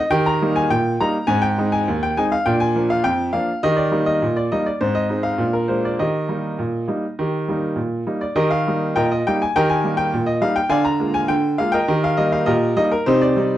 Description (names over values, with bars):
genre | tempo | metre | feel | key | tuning
ragtime piano | 102 BPM | 2/4 | straight | Eb major | A4 = 440 Hz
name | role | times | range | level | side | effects
clear upright piano | solo | 0.0-13.6 s | Eb2 to Bb5 | -17 LUFS | equal | slapback echo
room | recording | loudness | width
light reverb | dry, close 1970s-style studio recording | -17 LUFS | side -13 dB against mid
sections
0.0-8.4 A section; 8.4-13.6 B section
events
none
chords
0.1 Eb; 1.3 Ab; 2.5 Bb; 3.6 Eb; 4.8 Ab; 5.4 Bb7; 6.0 Eb; 10.7 Bb7/D; 11.9 Eb; 13.1 Cm